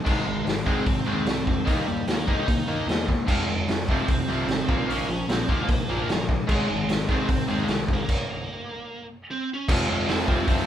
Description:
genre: punk rock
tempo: 150 BPM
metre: 4/4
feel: straight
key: F minor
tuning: A4 = 440 Hz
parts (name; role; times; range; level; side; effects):
- biting overdriven guitar; riff; 0.0-10.7 s; F2 to Eb4; -27 LUFS; left 1 dB; none
- bluesy overdriven lead guitar; melody; 0.1-10.7 s; G3 to Eb4; -30 LUFS; right 2 dB; distortion
- fuzz picked electric bass; bass; 0.1-10.6 s; F1 to Ab2; -32 LUFS; equal; overdrive
- raw garage drum kit; drums; 0.1-10.6 s; crash cymbal, hi-hat, kick drum, snare drum; -25 LUFS; equal; none
room: light reverb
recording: band playing live in one room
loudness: -22 LUFS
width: side -10 dB against mid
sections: 0.0-9.7 A section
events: stop 8.1-9.7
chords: 0.1 Ab; 1.7 Eb; 3.3 Fm; 4.7 Bb5; 6.5 Ab; 8.1 N.C.; 9.7 Fm

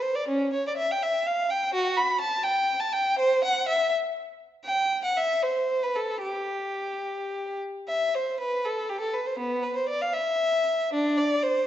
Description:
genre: classical, baroque-style suite movement for unaccompanied violin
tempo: 70-86 BPM (dotted quarters)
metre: 6/8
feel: rubato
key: G major, C major from 7.9 s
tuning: A4 = 440 Hz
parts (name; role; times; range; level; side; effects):
- clear violin; solo; 0.0-11.7 s; B3 to B5; -24 LUFS; equal; none
room: wet recital hall reverb, RT60 1.4 s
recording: nothing above 7.9 kHz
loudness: -24 LUFS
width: side -11 dB against mid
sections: 0.0-7.9 A section; 7.9-11.7 A section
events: none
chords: none

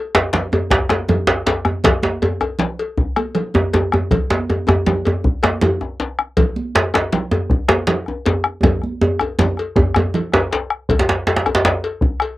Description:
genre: west african traditional, West African drum ensemble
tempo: 106 BPM (dotted quarters)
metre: 12/8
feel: straight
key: none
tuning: none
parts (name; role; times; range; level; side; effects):
- bombo; percussion; 0.1-12.4 s; none; -20 LUFS; left 1 dB; none
- cowbell; percussion; 0.1-12.4 s; none; -24 LUFS; left 4 dB; none
- djembe; percussion; 0.1-12.2 s; none; -24 LUFS; left 2 dB; none
- djembe; percussion; 0.1-11.8 s; none; -16 LUFS; right 1 dB; none
- congas; percussion; 0.3-10.4 s; none; -23 LUFS; right 3 dB; none
room: moderate booth ambience, RT60 0.2 s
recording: home recording on cassette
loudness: -15 LUFS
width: side -17 dB against mid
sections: 0.0-10.9 A section; 10.9-12.4 B section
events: drum fill 8.6-10.9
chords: none

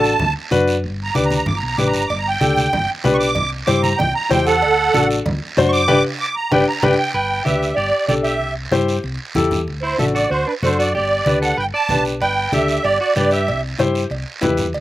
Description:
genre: latin, cumbia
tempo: 190 BPM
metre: 4/4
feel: straight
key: G major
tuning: A4 = 439 Hz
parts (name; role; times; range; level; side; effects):
- musette accordion; melody; 0.0-13.6 s; A4 to D6; -18 LUFS; right 3 dB; none
- warm upright piano; accompaniment; 0.0-14.6 s; D4 to C5; -18 LUFS; left 3 dB; none
- hollow-body short-scale fingered electric bass; bass; 0.0-14.8 s; G1 to G2; -24 LUFS; equal; none
- guiro; percussion; 0.0-14.8 s; none; -30 LUFS; right 4 dB; slapback echo
- congas; percussion; 0.2-14.8 s; none; -24 LUFS; equal; none
- cowbell and timbales; percussion; 2.1-6.9, 12.2-14.8 s; none; -28 LUFS; right 3 dB; none
- semi-hollow electric guitar; second line; 7.1-13.6 s; D4 to D5; -26 LUFS; right 2 dB; none
room: little or no reverb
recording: recorded outdoors, with no room sound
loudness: -15 LUFS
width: side -15 dB against mid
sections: 0.0-7.1 A section; 7.1-14.8 B section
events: accordion solo 0.0-7.1; band accent 5.9-7.1; drum fill 6.5-7.1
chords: 0.0 D; 0.8 G; 3.4 C; 4.6 D7; 5.9 G; 8.4 C; 9.7 D; 10.9 G; 13.5 C

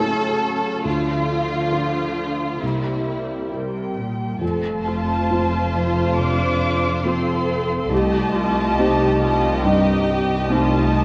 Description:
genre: cinematic, emotional film score for orchestra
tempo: 69 BPM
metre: 4/4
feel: rubato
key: unclear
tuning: A4 = 435 Hz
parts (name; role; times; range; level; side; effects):
- muted studio violin section; second line; 0.0-11.0 s; E4 to Eb5; -27 LUFS; equal; none
- felt-muted upright piano; accompaniment; 0.0-11.0 s; C2 to C5; -28 LUFS; equal; none
- muted studio viola section; accompaniment; 0.0-11.0 s; F3 to A4; -29 LUFS; equal; none
- muted studio cello section; bass; 0.0-11.0 s; C2 to D3; -29 LUFS; equal; none
- muted cello; melody; 3.5-11.0 s; G3 to D4; -29 LUFS; equal; none
- muted studio violin section; melody; 3.5-11.0 s; G5 to D6; -28 LUFS; equal; none
- muted chamber double bass section; bass; 4.4-11.0 s; F1 to C2; -28 LUFS; equal; none
room: wet scoring stage reverb, RT60 1.9 s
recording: worn, warbling old tape, cassette tape, warbly pitch drift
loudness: -21 LUFS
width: mono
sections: 0.0-4.4 A section; 4.4-11.0 A section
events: none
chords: 0.0 A/C#; 0.9 Dm; 2.6 C7; 4.4 F; 7.9 Cm

